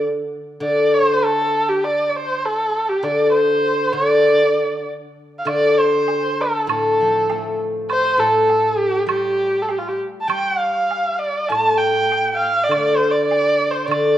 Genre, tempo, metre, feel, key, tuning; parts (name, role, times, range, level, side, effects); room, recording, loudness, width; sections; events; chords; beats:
chinese traditional, Chinese chamber ensemble; 100 BPM; 2/4; rubato; D yu mode; A4 = 440 Hz
steel-string zither; accompaniment; 0.0-14.2 s; A2 to A3; -20 LUFS; left 1 dB
dark erhu; melody; 0.6-14.2 s; F4 to A5; -18 LUFS; right 1 dB
woodblock; percussion; 5.5-14.1 s; -28 LUFS; right 7 dB
light reverb; dark, warm production; -16 LUFS; side -12 dB against mid
0.0-5.5 A section; 5.5-14.2 B section
0.01 | 0.62 1.24 | 1.85 2.45 | 3.05 3.65 | 4.25 4.86 | 5.48 6.09 | 6.70 7.30 | 7.90 8.50 | 9.09 9.69 | 10.30 10.91 | 11.52 12.12 | 12.71 13.31 | 13.91